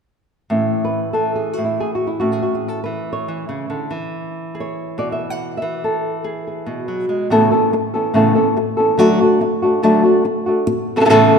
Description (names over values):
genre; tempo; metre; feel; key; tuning
flamenco; free time; none; none; A major; A4 = 440 Hz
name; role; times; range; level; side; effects
flamenco guitar; solo; 0.5-11.4 s; A2 to F#5; -15 LUFS; equal; none
room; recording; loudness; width
wet concert hall reverb, RT60 1.9 s; recorded in a church or concert hall; -15 LUFS; side -6 dB against mid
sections
0.5-7.3 A section; 7.3-11.4 B section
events
none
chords
0.5 A; 3.9 E; 7.3 Aadd9; 9.0 D; 10.7 Aadd9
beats
free time